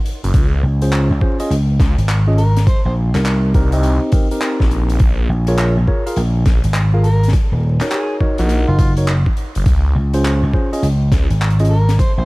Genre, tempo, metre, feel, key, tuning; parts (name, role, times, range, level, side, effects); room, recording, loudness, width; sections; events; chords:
glitch hop; 103 BPM; 4/4; swing 64% on 16ths; A4 = 441 Hz
gated 80s drum kit; drums; 0.1-12.1 s; handclaps, hi-hat, snare drum; -26 LUFS; left 1 dB
phased detuned saw bass; bass; 0.2-11.3 s; Gb1 to Db2; -16 LUFS; equal; phaser
electronic kick drum; drums; 0.3-12.1 s; -15 LUFS; equal; overdrive
vintage slap bass; bass; 0.6-12.2 s; Eb1 to Db2; -14 LUFS; equal
tine electric piano; stabs; 0.8-11.7 s; C4 to Gb5; -22 LUFS; equal; sidechain pumping, digital delay
overdriven harmonica; melody; 2.4-2.9, 7.0-12.2 s; F4 to C5; -26 LUFS; equal; digital delay
little or no reverb; vinyl crackle; -13 LUFS; side -23 dB against mid
0.0-12.2 A section
0.3 Dbmaj7; 2.7 Cm7; 5.0 Bbm7; 7.3 Gb6; 9.7 Dbmaj7